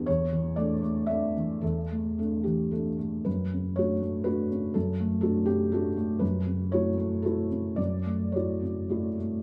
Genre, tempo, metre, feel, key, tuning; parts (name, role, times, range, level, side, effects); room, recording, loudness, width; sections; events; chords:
neoclassical minimalist piano; 105-125 BPM; 3/4; rubato; D major; A4 = 439 Hz
felt-muted upright piano; solo; 0.0-9.4 s; E2 to E5; -28 LUFS; equal
moderate stone room reverb, RT60 1.0 s; band playing live in one room; -28 LUFS; mono
0.0-9.4 A section
0.1 Asus4/E; 3.3 Dmaj7/F#; 6.2 F#m7